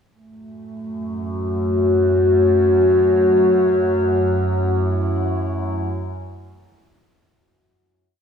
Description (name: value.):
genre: dark ambient drone.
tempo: 66 BPM.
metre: 4/4.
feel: straight.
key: F# minor.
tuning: A4 = 440 Hz.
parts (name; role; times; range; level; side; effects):
dark analog pad; sustained chords; 0.1-7.3 s; F#2 to C#5; -17 LUFS; left 1 dB; chorus.
overtone-sweeping drone; drone; 1.0-7.4 s; F#2 to F#3; -24 LUFS; equal; chorus, built-in reverb, phaser.
room: wet cathedral reverb, RT60 5.8 s.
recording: studio ambience.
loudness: -16 LUFS.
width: side -7 dB against mid.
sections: 0.1-7.3 A section.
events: fade-in on synth drone 0.1-7.3; fade-out 3.7-7.3.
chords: 0.1 F#m; 3.7 A/F#.